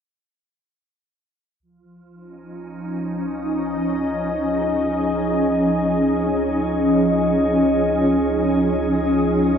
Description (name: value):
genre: ambient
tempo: free time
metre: none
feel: none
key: Db major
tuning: A4 = 440 Hz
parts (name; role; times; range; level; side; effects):
- glassy FM pad; sustained chords; 2.6-9.6 s; F3 to Eb5; -18 LUFS; equal; ensemble chorus, built-in reverb
- warm sub bass; bass; 1.6-9.6 s; Db2; -34 LUFS; equal; none
room: wet plate reverb, RT60 2.5 s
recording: none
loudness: -18 LUFS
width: side -7 dB against mid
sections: 1.6-9.6 A section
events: fade-in on sub bass 1.6-9.6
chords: 1.6 Dbadd9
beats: free time